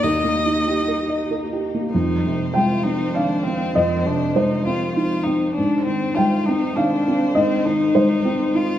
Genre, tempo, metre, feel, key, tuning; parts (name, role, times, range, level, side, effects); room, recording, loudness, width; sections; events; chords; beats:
neoclassical piano and strings; 99 BPM; 3/4; rubato; A4 = 435 Hz
clear violin; melody; 0.0-8.8 s; C4 to Eb5; -24 LUFS; left 2 dB
felt-muted upright piano; accompaniment; 0.0-8.8 s; Eb2 to G5; -19 LUFS; equal
rich chamber string section; sustained chords; 0.0-8.8 s; Eb3 to C5; -31 LUFS; equal
wet recital hall reverb, RT60 1.5 s; recorded in a church or concert hall; -18 LUFS; side -11 dB against mid
0.0-1.9 A section; 1.9-8.8 B section
0.0 Eb; 1.9 Fm7; 5.6 Ab
| 0.04 0.67 1.30 | 1.93 2.54 3.14 | 3.76 4.37 4.97 | 5.57 6.17 6.77 | 7.37 7.96 8.56